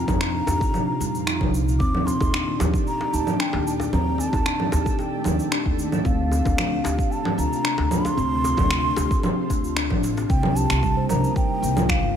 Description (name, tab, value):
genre	organic downtempo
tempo	113 BPM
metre	4/4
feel	straight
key	C dorian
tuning	A4 = 440 Hz
part	breathy mellow bansuri	melody	0.0-12.2 s	F5 to D6	-28 LUFS	right 1 dB	tape echo
part	ethereal airy pad	sustained chords	0.0-12.2 s	Bb2 to D5	-32 LUFS	right 1 dB	ensemble chorus, built-in reverb, sidechain pumping
part	steel tongue drum	arpeggios	0.0-11.9 s	G3 to C5	-27 LUFS	left 2 dB	tape echo
part	upright bass	bass	0.0-12.2 s	G1 to F2	-26 LUFS	equal	sidechain pumping
part	electronic congas, cabasa and finger snaps	drums	0.1-12.0 s	none	-26 LUFS	right 1 dB	overdrive
part	electronic kick drum	drums	0.1-12.0 s	none	-24 LUFS	equal	none
part	djembe	percussion	0.1-10.3 s	none	-34 LUFS	left 2 dB	none
part	twinkling granular texture	texture	2.5-10.3 s	A3	-38 LUFS	right 5 dB	built-in reverb
room	light reverb, studio reverb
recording	none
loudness	-20 LUFS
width	side -8 dB against mid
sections	0.0-10.3 A section; 10.3-12.2 B section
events	none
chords	0.0 Fsus4; 1.8 Ebmaj7; 6.0 Dm7; 10.3 Cm7